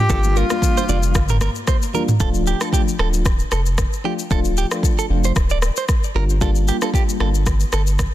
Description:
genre	afrobeats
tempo	114 BPM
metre	4/4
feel	swing 55% on 16ths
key	D minor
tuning	A4 = 442 Hz
part	breathy tenor saxophone	melody	0.0-1.4 s	F4 to G4	-24 LUFS	left 1 dB	ping-pong delay
part	FM electric piano with tremolo	accompaniment	0.1-7.4 s	F3 to F4	-25 LUFS	left 2 dB	phaser
part	direct-recorded clean electric guitar	riff	0.1-7.8 s	G4 to D5	-27 LUFS	right 8 dB	ping-pong delay
part	warm sub bass	bass	0.1-8.1 s	D1 to G1	-19 LUFS	equal	none
part	afro-pop drum kit	drums	0.1-8.1 s	kick drum, rim click, shaker, toms	-20 LUFS	equal	none
part	congas	percussion	0.1-2.1 s	none	-30 LUFS	left 6 dB	none
room	digital ambience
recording	dense, heavily limited modern master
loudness	-16 LUFS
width	side -14 dB against mid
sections	0.0-2.2 A section; 2.2-8.1 B section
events	none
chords	0.0 Gm7; 2.2 Dm; 6.2 Gm7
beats	| 0.10 0.62 1.15 1.68 | 2.20 2.73 3.25 3.78 | 4.31 4.83 5.36 5.89 | 6.41 6.94 7.46 7.99

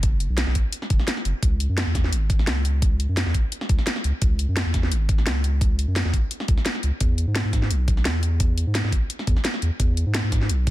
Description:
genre	liquid drum and bass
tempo	172 BPM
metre	4/4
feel	straight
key	C# minor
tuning	A4 = 440 Hz
part	saturated sub bass	bass	0.0-10.7 s	F#1 to G#2	-22 LUFS	equal	none
part	drum and bass drum kit	drums	0.0-10.7 s	hi-hat, snare drum	-27 LUFS	equal	none
part	electronic kick drum	drums	0.0-10.7 s	none	-21 LUFS	equal	none
room	little or no reverb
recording	dense, heavily limited modern master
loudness	-20 LUFS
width	side -16 dB against mid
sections	0.0-10.7 A section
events	none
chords	none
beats	| 0.03 0.38 0.73 1.08 | 1.43 1.77 2.12 2.47 | 2.82 3.17 3.52 3.87 | 4.22 4.57 4.91 5.26 | 5.61 5.96 6.31 6.66 | 7.01 7.36 7.71 8.05 | 8.40 8.75 9.10 9.45 | 9.80 10.15 10.49

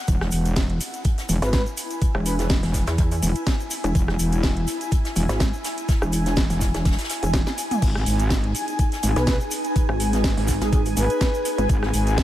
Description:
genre	bass house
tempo	124 BPM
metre	4/4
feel	swing 54% on 16ths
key	unclear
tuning	A4 = 440 Hz
part	ethereal airy pad	texture	0.0-12.2 s	D#4 to G#5	-29 LUFS	left 1 dB	ensemble chorus, built-in reverb, sidechain pumping
part	metallic wobble bass	bass	0.1-12.2 s	E1 to G#1	-22 LUFS	equal	chorus, overdrive, sidechain pumping
part	electronic kick drum	drums	0.1-12.2 s	none	-22 LUFS	equal	none
part	house drum kit	drums	0.1-12.2 s	crash cymbal, hi-hat, rim click, snare drum, toms	-29 LUFS	right 1 dB	none
part	natural country drum kit	drums	0.1-12.2 s	hi-hat, snare drum	-38 LUFS	left 2 dB	sidechain pumping on hats, high-pass filter on hats, high-pass filter on snare, high-pass filter on room
part	tube shaker	percussion	0.1-12.2 s	none	-35 LUFS	left 2 dB	none
part	breathy flute-like synth lead	melody	1.4-2.5, 9.2-11.7 s	G#4 to B4	-30 LUFS	right 1 dB	wide subtle chorus, tape echo
part	pulsing pluck wobble bass	bass	1.4-11.7 s	E1 to E2	-23 LUFS	equal	chorus, tube saturation, sidechain pumping
room	light reverb, small room ambience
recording	none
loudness	-20 LUFS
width	side -13 dB against mid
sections	0.0-12.2 A section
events	drum fill 7.3-7.8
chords	0.1 E; 7.8 G#m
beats	| 0.08 0.56 1.05 1.53 | 2.02 2.50 2.98 3.47 | 3.95 4.44 4.92 5.40 | 5.89 6.37 6.86 7.34 | 7.82 8.31 8.79 9.27 | 9.76 10.24 10.73 11.21 | 11.69 12.18

